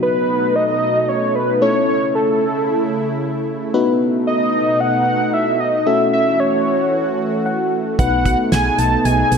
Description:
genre	synth-pop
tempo	113 BPM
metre	4/4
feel	straight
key	unclear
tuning	A4 = 440 Hz
part	wide unison lead	melody	0.0-9.4 s	A4 to A5	-17 LUFS	equal	ping-pong delay
part	FM electric piano	accompaniment	0.0-9.4 s	F#3 to F#5	-21 LUFS	left 3 dB	chorus
part	lush unison pad	sustained chords	0.0-9.4 s	B2 to F#4	-22 LUFS	right 2 dB	chorus
part	solid FM bass	bass	8.0-9.4 s	B1	-20 LUFS	right 1 dB	none
part	damped 70s drum kit	drums	8.0-9.4 s	hi-hat, kick drum, snare drum	-21 LUFS	right 1 dB	none
room	wet digital room reverb, RT60 1.2 s, studio reverb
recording	none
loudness	-15 LUFS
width	side -6 dB against mid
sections	0.0-9.4 A section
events	FM electric piano fill 7.2-8.0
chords	0.0 B7; 1.6 A; 3.7 B7; 5.9 F#m7; 8.0 B7

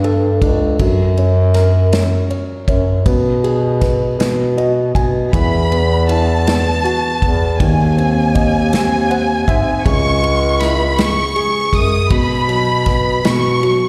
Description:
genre	six-eight pop ballad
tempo	53 BPM (dotted quarters)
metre	6/8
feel	straight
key	E major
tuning	A4 = 440 Hz
part	warm grand piano	accompaniment	0.0-13.9 s	B2 to G#5	-21 LUFS	equal	slapback echo
part	warm bass clarinet	bass	0.0-13.9 s	C#2 to B2	-18 LUFS	equal	none
part	unplugged drum kit	drums	0.0-13.8 s	kick drum, ride cymbal, snare drum	-22 LUFS	equal	none
part	warm chamber violin section	second line	5.3-13.9 s	G#5 to D#6	-21 LUFS	equal	slapback echo
room	little or no reverb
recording	live gig heard through the venue's PA, recital hall reverb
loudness	-15 LUFS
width	mono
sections	0.0-13.9 A section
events	grand piano fill 4.2-5.3, 8.7-9.9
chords	0.0 Gsus2; 0.8 F#; 3.1 G#m/B; 4.2 B5; 5.3 Esus2; 7.6 G#/D#; 9.9 C#m; 12.1 B5

